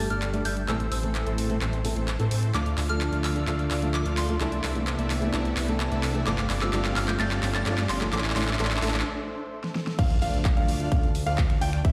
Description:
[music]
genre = EDM, festival progressive house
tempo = 129 BPM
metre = 4/4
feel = straight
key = D minor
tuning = A4 = 439 Hz
[part]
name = soft synth bell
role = melody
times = 0.0-9.0 s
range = C6 to A6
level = -37 LUFS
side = equal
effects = chorus, phaser, delay
[part]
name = fingerpicked steel-string acoustic guitar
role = accompaniment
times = 0.0-8.9 s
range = G2 to A4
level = -34 LUFS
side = equal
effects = sidechain pumping, delay
[part]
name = lush unison pad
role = sustained chords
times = 0.0-11.9 s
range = C3 to F5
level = -38 LUFS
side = equal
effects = chorus, sidechain pumping
[part]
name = fat analog bass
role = bass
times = 0.0-11.9 s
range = G1 to A2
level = -31 LUFS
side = equal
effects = sidechain pumping
[part]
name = riser and impact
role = sound effects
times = 1.8-11.8 s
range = none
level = -39 LUFS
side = equal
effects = none
[part]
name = supersaw chords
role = riff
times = 0.1-11.9 s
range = E3 to G5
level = -36 LUFS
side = equal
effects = sidechain pumping, low-pass filter, delay
[part]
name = big-room dance drum kit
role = drums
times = 0.1-11.9 s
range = crash cymbal, finger snaps, handclaps, hi-hat, snare drum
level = -35 LUFS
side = equal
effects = overdrive
[part]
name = clear concert grand piano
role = arpeggios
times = 10.0-11.9 s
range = E5 to G5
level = -35 LUFS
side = equal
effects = sidechain pumping, delay
[part]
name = electronic kick drum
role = drums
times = 10.0-11.9 s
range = none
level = -25 LUFS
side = equal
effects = overdrive
[sound]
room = moderate lush hall reverb, RT60 1.9 s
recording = played on a big sound system in a bare room, large studio reverb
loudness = -26 LUFS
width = mono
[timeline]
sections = 0.0-10.0 A section; 10.0-11.9 B section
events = build-up 0.0-10.0; drum fill 0.0-9.1, 9.6-10.0; filter sweep on supersaw synth 0.0-10.0; break 9.1-10.0; drop 10.0-11.9; impact 10.0-11.8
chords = 0.0 Gsus2; 0.7 Am; 2.5 Dm; 4.4 C; 6.3 Gsus2; 8.1 Am; 10.0 Dm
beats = 0.22 | 0.68 1.15 1.61 2.08 | 2.54 3.01 3.48 3.94 | 4.41 4.87 5.33 5.80 | 6.27 6.73 7.20 7.66 | 8.13 8.59 9.06 9.52 | 9.99 10.45 10.92 11.38 | 11.85

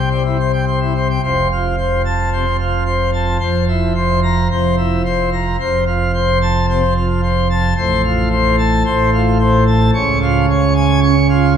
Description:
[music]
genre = classical, organ toccata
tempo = 110 BPM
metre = 4/4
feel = straight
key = F major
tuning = A4 = 441 Hz
[part]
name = pipe organ, plenum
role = solo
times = 0.0-11.6 s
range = F1 to Bb5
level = -13 LUFS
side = equal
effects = none
[sound]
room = wet church reverb, RT60 3.5 s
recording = minimal, uncompressed stereo recording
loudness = -13 LUFS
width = side -8 dB against mid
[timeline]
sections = 0.0-1.2 A section; 1.2-11.6 B section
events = none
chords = 0.0 C; 1.2 F; 3.4 C7/F; 5.6 F; 7.8 F/A; 9.9 Db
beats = 0.10 0.66 | 1.23 1.77 2.32 2.87 | 3.41 3.96 4.51 5.06 | 5.60 6.15 6.69 7.24 | 7.78 8.32 8.86 9.40 | 9.95 10.49 11.03 11.57

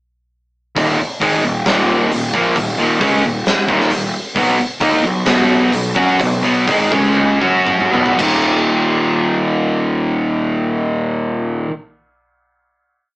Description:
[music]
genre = hard rock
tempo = 114-134 BPM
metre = 4/4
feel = straight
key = Eb minor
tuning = A4 = 440 Hz
[part]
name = distorted electric guitar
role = riff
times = 0.8-11.7 s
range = Eb2 to F#4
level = -18 LUFS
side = right 1 dB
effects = overdrive
[part]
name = overdriven electric guitar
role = riff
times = 0.8-11.7 s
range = Eb2 to F#4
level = -17 LUFS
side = left 1 dB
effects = none
[part]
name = fuzz picked electric bass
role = bass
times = 0.8-11.6 s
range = Eb1 to F#2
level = -21 LUFS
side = equal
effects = overdrive
[part]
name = big rock drum kit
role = drums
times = 0.8-8.3 s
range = crash cymbal, hi-hat, kick drum, snare drum, toms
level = -19 LUFS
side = equal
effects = none
[sound]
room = moderate studio ambience, RT60 0.5 s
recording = band playing live in one room, small speaker sound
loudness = -13 LUFS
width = side -23 dB against mid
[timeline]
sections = 0.8-8.2 riff; 8.2-12.4 final chord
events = slowing down 4.4-8.2; drum fill 7.2-8.2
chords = 0.8 Eb5; 4.4 B5; 6.9 Db5; 7.4 Gb5; 7.9 B5; 8.2 Eb5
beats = | 0.77 1.22 1.67 2.12 | 2.57 3.02 3.47 3.92 | 4.37 4.82 5.27 5.73 | 6.20 6.68 7.17 7.67 | 8.18 8.71 9.23 9.75 | 10.28 10.80 11.32

